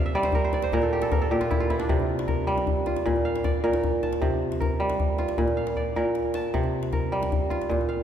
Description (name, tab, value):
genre	west african traditional, West African string and xylophone music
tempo	103 BPM (dotted quarters)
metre	12/8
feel	straight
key	C mixolydian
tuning	A4 = 438 Hz
part	kora	arpeggios	0.0-8.0 s	Bb2 to A5	-24 LUFS	right 1 dB	none
part	djembe	percussion	0.0-7.9 s	none	-28 LUFS	left 2 dB	none
room	wet church reverb, RT60 3.5 s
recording	recorded in a church or concert hall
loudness	-23 LUFS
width	side -9 dB against mid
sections	0.0-8.0 A section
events	kora fill 0.0-1.9; drum fill 5.8-6.5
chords	0.0 C5; 0.7 N.C.; 1.9 C5; 3.1 Bb; 4.2 C5; 5.4 Bb; 6.5 C5